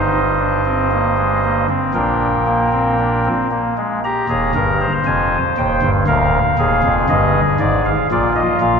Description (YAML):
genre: classical, baroque-style 4-part fugue for pipe organ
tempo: 58 BPM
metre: 4/4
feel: straight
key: Eb major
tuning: A4 = 440 Hz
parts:
  - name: chamber organ, soft reed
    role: solo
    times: 0.0-8.8 s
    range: D1 to Bb5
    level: -14 LUFS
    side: equal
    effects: none
room: wet cathedral reverb, RT60 4.6 s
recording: heard from further back in the room, nothing above 8.0 kHz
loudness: -14 LUFS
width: side -6 dB against mid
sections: 0.0-4.0 A section; 4.0-8.8 B section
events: none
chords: 0.0 Eb/G; 2.0 Bb; 4.0 Eb; 6.1 Ddim; 8.1 Bb